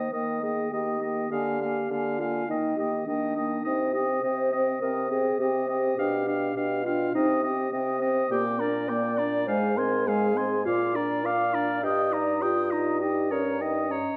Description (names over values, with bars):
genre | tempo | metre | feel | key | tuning
quick classical-period movement for wind quintet | 102 BPM | 4/4 | straight | Eb major | A4 = 441 Hz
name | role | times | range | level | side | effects
mellow hollow concert flute | melody | 0.0-14.2 s | G5 to Eb6 | -36 LUFS | equal | none
clear oboe | second line | 0.0-14.2 s | Db5 to Ab5 | -36 LUFS | equal | none
dark French horn | accompaniment | 0.0-14.2 s | Ab3 to G4 | -33 LUFS | equal | none
dark clarinet | accompaniment | 0.0-14.2 s | D4 to F5 | -32 LUFS | equal | none
mellow bassoon | bass | 0.0-14.0 s | G2 to Eb3 | -33 LUFS | equal | none
room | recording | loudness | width
wet recital hall reverb, RT60 1.5 s | dark, warm production | -27 LUFS | mono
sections
0.0-14.2 A section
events
none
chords
0.0 Eb; 1.3 Bb7/D; 2.5 Eb; 3.7 Cm; 6.0 G7/B; 7.2 Cm; 8.3 Gm/Bb; 9.5 Fm/Ab; 10.7 Bb; 11.8 Eb/G; 13.0 Eb7/G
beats
0.13 0.72 | 1.31 1.91 2.49 3.08 | 3.66 4.24 4.83 5.41 | 5.99 6.57 7.15 7.73 | 8.31 8.89 9.48 10.07 | 10.66 11.25 11.84 12.42 | 13.01 13.61